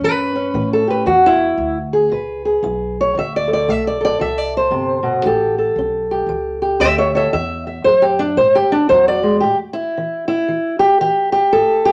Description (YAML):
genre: acoustic country blues, solo or duo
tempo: 115 BPM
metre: 4/4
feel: swing 62% on 8ths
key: A mixolydian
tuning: A4 = 442 Hz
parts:
  - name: fingerpicked old ladder-braced acoustic guitar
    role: melody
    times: 0.0-11.9 s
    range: A2 to E5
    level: -16 LUFS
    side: equal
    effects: none
  - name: upright bass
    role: bass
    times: 0.0-9.4 s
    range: G1 to A2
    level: -30 LUFS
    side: equal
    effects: none
room: wet studio reverb, RT60 0.6 s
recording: none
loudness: -16 LUFS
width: mono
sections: 0.0-9.4 A section; 9.4-11.9 B section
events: steel-string acoustic guitar solo 0.0-9.4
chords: 0.0 A7; 1.1 E7; 3.1 D5; 5.2 A7; 7.3 E; 9.4 A7(no3)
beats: 0.02 0.55 | 1.06 1.59 2.11 2.63 | 3.15 3.67 4.19 4.71 | 5.24 5.76 6.28 6.80 | 7.33 7.85 8.37 8.90 | 9.42 9.94 10.47 10.99 | 11.52